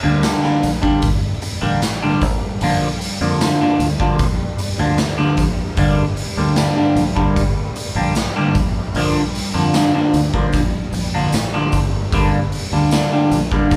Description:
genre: psychedelic rock.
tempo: 76 BPM.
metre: 4/4.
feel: straight.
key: G minor.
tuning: A4 = 444 Hz.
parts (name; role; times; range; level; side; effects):
semi-hollow electric guitar; riff; 0.0-13.8 s; D3 to D4; -20 LUFS; equal; phaser.
fingered electric bass; bass; 0.0-13.8 s; G1 to F2; -26 LUFS; equal; none.
swarming drone; drone; 1.1-13.8 s; G2 to G3; -30 LUFS; equal; built-in reverb, phaser.
raw garage drum kit; drums; 0.2-13.8 s; hi-hat, kick drum, snare drum; -24 LUFS; equal; none.
tambourine; percussion; 0.2-13.8 s; none; -38 LUFS; equal; none.
room: moderate large studio reverb, RT60 1.5 s.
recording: band playing live in one room.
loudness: -18 LUFS.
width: mono.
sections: 0.0-13.8 A section.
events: none.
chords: 0.0 Gm; 2.2 Bb; 5.8 Gm; 8.6 Bb; 12.1 Gm.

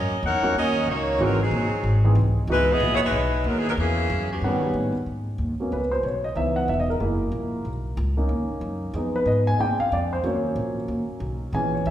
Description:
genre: jazz, big band swing.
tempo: 185 BPM.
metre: 4/4.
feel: swing 62% on 8ths.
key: G# minor.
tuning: A4 = 440 Hz.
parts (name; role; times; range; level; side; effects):
clear saxophone section; melody; 0.0-4.8 s; C#3 to F#5; -23 LUFS; equal; none.
upright bass; bass; 0.0-11.9 s; E1 to A#2; -25 LUFS; equal; none.
warm concert grand piano; accompaniment; 0.4-11.9 s; D#3 to Ab5; -25 LUFS; equal; none.
room: wet recital hall reverb, RT60 1.7 s.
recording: recorded in a church or concert hall.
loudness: -21 LUFS.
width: side -11 dB against mid.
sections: 0.0-5.1 A section; 5.1-11.9 B section.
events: grand piano solo 5.1-11.9.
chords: 0.0 D#m7; 1.2 G#7b13; 2.5 C#m11; 3.8 A#m7b5; 4.4 D#7alt; 5.1 G#m11; 6.4 C#m9; 7.0 F#7; 7.7 Bmaj7; 8.9 Fm7b5; 9.6 A#7; 10.2 D#m7.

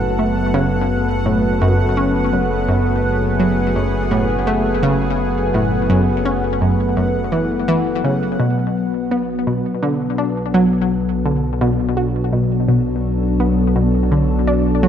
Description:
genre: ambient, sequencer-driven space music.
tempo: 84 BPM.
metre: 4/4.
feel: straight.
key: F# minor, B minor from 8.4 s.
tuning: A4 = 439 Hz.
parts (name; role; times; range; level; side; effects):
lush unison pad; sustained chords; 0.0-14.9 s; F#3 to A4; -19 LUFS; left 1 dB; chorus.
fat analog bass; bass; 0.0-14.9 s; F#1 to B1; -22 LUFS; equal; none.
bubbling stepped-filter texture; texture; 0.0-8.4 s; F#5; -29 LUFS; equal; chorus, built-in reverb.
analog pluck; riff; 0.2-14.9 s; F#2 to F#4; -19 LUFS; equal; chorus, ping-pong delay.
room: moderate spring reverb, RT60 2.5 s.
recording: echo-heavy mix.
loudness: -15 LUFS.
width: side -9 dB against mid.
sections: 0.0-8.4 A section; 8.4-14.9 B section.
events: none.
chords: 0.0 F#m; 8.4 Bm7.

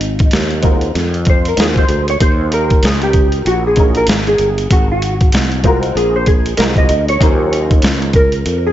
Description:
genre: hip hop, jazz-hop.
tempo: 96 BPM.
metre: 4/4.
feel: swing 61% on 16ths.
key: Eb dorian.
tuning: A4 = 438 Hz.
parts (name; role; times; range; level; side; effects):
hollow-body jazz guitar; melody; 0.0-8.7 s; Eb4 to Eb5; -17 LUFS; equal; ensemble chorus, analog delay.
sustaining fretless electric bass; bass; 0.0-8.7 s; G1 to F2; -17 LUFS; equal; analog chorus.
boom bap sampler-style drum kit; drums; 0.0-8.6 s; hi-hat, kick drum, snare drum; -14 LUFS; equal; none.
dark upright piano; accompaniment; 0.6-8.1 s; Gb3 to Bb4; -20 LUFS; left 1 dB; ensemble chorus.
room: light reverb, digital ambience.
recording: nothing above 7.8 kHz.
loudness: -11 LUFS.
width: side -12 dB against mid.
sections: 0.0-8.7 A section.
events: hollow-body jazz guitar solo 0.0-8.7.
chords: 0.0 Ab13; 2.2 Eb7(no3); 4.7 Ab13; 7.2 Ebm9.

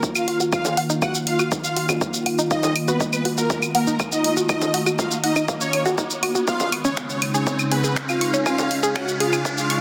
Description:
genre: melodic techno.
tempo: 121 BPM.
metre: 4/4.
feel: straight.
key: Eb minor.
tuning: A4 = 440 Hz.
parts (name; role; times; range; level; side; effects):
evolving wavetable pad; sustained chords; 0.0-9.8 s; Db3 to F4; -29 LUFS; equal; phaser, built-in reverb, sidechain pumping.
analog pluck; arpeggios; 0.0-9.8 s; Db4 to Db6; -28 LUFS; equal; chorus, phaser, sidechain pumping, tape echo.
deep house drum kit; drums; 0.0-9.8 s; claves, congas, finger snaps, hi-hat, shaker; -28 LUFS; equal; high-pass filter on perc, high-pass filter on hats, soft clipping on snare, high-pass filter on snare, high-pass filter on room.
electronic kick drum; drums; 0.0-9.6 s; none; -29 LUFS; equal; overdrive, high-pass filter on kick, high-pass filter on room.
riser; sound effects; 1.2-9.8 s; none; -34 LUFS; equal; none.
mellow synth brass; melody; 0.2-9.8 s; Bb3 to Gb4; -30 LUFS; equal; chorus, phaser, sidechain pumping, dub echo.
big bright polysynth; second line; 0.2-9.8 s; Bb4 to Gb5; -30 LUFS; equal; ensemble chorus, sidechain pumping, tape echo.
room: moderate huge ambient reverb, RT60 4.5 s.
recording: dense, heavily limited modern master, high-pass filter.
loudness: -21 LUFS.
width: mono.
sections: 0.0-9.8 A section.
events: build-up 0.0-9.8; filter sweep on synth arpeggio sound 0.0-9.8; filter sweep on ambient pad 0.0-9.8; riser 1.2-9.8.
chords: 0.0 Ebmadd9; 6.5 Db.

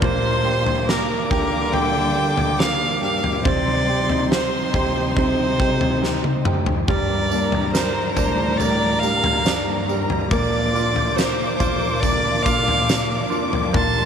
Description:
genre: pop ballad.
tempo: 70 BPM.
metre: 4/4.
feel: straight.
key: G minor.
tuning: A4 = 440 Hz.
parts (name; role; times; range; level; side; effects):
clear violin; melody; 0.0-14.1 s; Bb4 to A5; -23 LUFS; right 1 dB; slapback echo.
warm studio violin section; second line; 0.0-14.1 s; Bb5 to D6; -28 LUFS; left 3 dB; none.
clear baby grand piano; accompaniment; 0.0-14.1 s; G3 to Bb4; -27 LUFS; right 14 dB; none.
dark studio string section; sustained chords; 0.0-14.1 s; F3 to Bb4; -29 LUFS; left 2 dB; none.
nylon-string guitar; arpeggios; 0.0-14.1 s; G2 to Bb4; -30 LUFS; left 14 dB; none.
dark chamber cello section; bass; 0.0-14.1 s; D2 to D3; -26 LUFS; equal; none.
huge arena drum kit; drums; 0.0-13.9 s; kick drum, snare drum, toms; -23 LUFS; left 1 dB; none.
tambourine; percussion; 7.3-13.5 s; none; -35 LUFS; right 17 dB; none.
room: studio reverb.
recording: 1960s-style stereo with parts hard left and right.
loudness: -17 LUFS.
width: side -7 dB against mid.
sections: 0.0-14.1 A section.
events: drum fill 6.0-6.9.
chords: 0.0 Gm/Bb; 3.5 Cm; 6.9 Gm; 10.3 Bb.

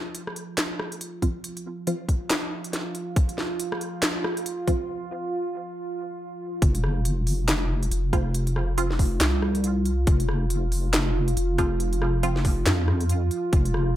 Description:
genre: deep dubstep.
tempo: 139 BPM.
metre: 4/4.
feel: swing 59% on 16ths, half-time.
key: unclear.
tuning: A4 = 441 Hz.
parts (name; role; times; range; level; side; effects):
deep dark ambient pad; sustained chords; 0.0-14.0 s; F4; -31 LUFS; right 3 dB; chorus, built-in reverb.
garage drum kit; drums; 0.1-13.8 s; handclaps, hi-hat, rim click, snare drum; -28 LUFS; equal; none.
filtered dub chord stab; stabs; 1.2-1.9, 4.7-4.8, 8.1-8.9, 11.6-12.3 s; F3 to F4; -31 LUFS; equal; phaser, dub echo.
electronic kick drum; drums; 1.2-13.6 s; none; -22 LUFS; equal; none.
deep soft wobble bass; bass; 6.6-14.0 s; F1 to F2; -24 LUFS; equal; chorus.
room: little or no reverb.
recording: none.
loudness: -23 LUFS.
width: side -13 dB against mid.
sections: 0.0-6.6 A section; 6.6-14.0 B section.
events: build-up 0.0-6.6; filter sweep on synth stab 0.0-6.6; break 4.9-6.6; drop 6.6-14.0.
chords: 0.0 F5.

